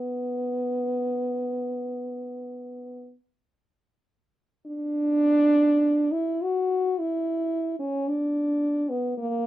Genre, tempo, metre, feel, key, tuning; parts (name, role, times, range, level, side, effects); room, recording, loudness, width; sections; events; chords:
classical, free, expressive piece for unaccompanied French horn; 34-57 BPM; 4/4; rubato; B minor; A4 = 440 Hz
dark French horn; solo; 0.0-9.5 s; A#3 to F#4; -24 LUFS; equal
light reverb; -23 LUFS; side -14 dB against mid
0.0-4.7 A section; 4.7-9.5 B section